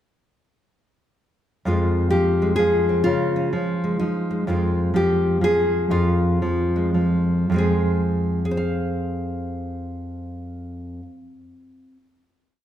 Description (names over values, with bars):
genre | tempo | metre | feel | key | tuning
folk, solo fingerstyle acoustic guitar | 104-128 BPM | 3/4 | swing 63% on 8ths | F minor | A4 = 440 Hz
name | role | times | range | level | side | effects
nylon-string guitar | solo | 1.7-12.0 s | F2 to F5 | -19 LUFS | equal | none
room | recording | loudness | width
moderate recital hall reverb, RT60 1.4 s | recorded in a church or concert hall | -19 LUFS | side -10 dB against mid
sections
1.6-7.5 A section; 7.5-11.0 final chord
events
slowing down 4.5-7.5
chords
1.6 Fmadd9; 3.1 Db; 4.5 Fm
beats
| 1.64 2.11 2.58 | 3.05 3.52 4.00 | 4.47 4.94 5.42 | 5.91 6.42 6.96 | 7.52 8.09 8.67 | 9.25 9.82 10.40